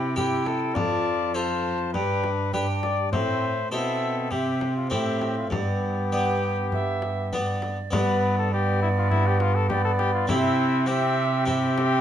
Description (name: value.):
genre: classical, renaissance-style consort dance.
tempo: 101 BPM.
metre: 4/4.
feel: straight.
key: G mixolydian.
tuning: A4 = 440 Hz.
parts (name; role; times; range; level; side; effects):
warm cornet; melody; 0.0-12.0 s; E4 to D5; -28 LUFS; left 5 dB; none.
alto recorder; second line; 0.0-12.0 s; D5 to A5; -31 LUFS; right 6 dB; none.
bright trombone; accompaniment; 0.0-12.0 s; B3 to F4; -29 LUFS; left 1 dB; none.
harpsichord; accompaniment; 0.0-12.0 s; F2 to C5; -31 LUFS; left 2 dB; none.
rich cello; bass; 0.0-12.0 s; F2 to C3; -27 LUFS; right 2 dB; none.
frame drum; percussion; 0.2-12.0 s; none; -32 LUFS; left 2 dB; none.
room: moderate stone room reverb, RT60 1.0 s.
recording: none.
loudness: -22 LUFS.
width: side -10 dB against mid.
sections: 0.0-7.9 A section; 7.9-12.0 B section.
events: none.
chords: 0.0 C; 0.8 F; 1.9 G; 3.1 Am; 4.3 C; 5.5 G; 10.3 C.